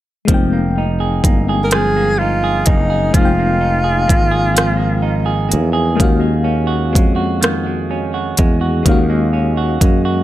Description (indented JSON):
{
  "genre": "slow six-eight R&B",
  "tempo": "42 BPM (dotted quarters)",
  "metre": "6/8",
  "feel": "straight",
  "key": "F phrygian",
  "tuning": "A4 = 440 Hz",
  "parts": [
    { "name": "semi-hollow electric guitar", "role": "second line", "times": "0.3-10.2 s", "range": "Eb3 to Ab4", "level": "-21 LUFS", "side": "right 6 dB", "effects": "ping-pong delay" },
    { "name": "FM electric piano with tremolo", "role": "accompaniment", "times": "0.3-10.2 s", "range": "Ab3 to G5", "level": "-21 LUFS", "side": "left 6 dB", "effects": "none" },
    { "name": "sustaining fretless electric bass", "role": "bass", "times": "0.3-10.2 s", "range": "F1 to Gb2", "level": "-17 LUFS", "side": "equal", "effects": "none" },
    { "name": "smooth R&B drum kit", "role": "drums", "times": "0.3-10.0 s", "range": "hi-hat, kick drum, rim click", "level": "-14 LUFS", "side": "equal", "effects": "overdrive" },
    { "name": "breathy tenor saxophone", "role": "melody", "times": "1.6-5.5 s", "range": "Eb4 to Bb4", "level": "-18 LUFS", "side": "equal", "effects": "none" }
  ],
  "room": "light reverb",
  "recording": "none",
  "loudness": "-13 LUFS",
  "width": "side -14 dB against mid",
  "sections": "0.3-10.2 A section",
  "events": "none",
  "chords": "0.3 Fm11; 6.0 Ebm11"
}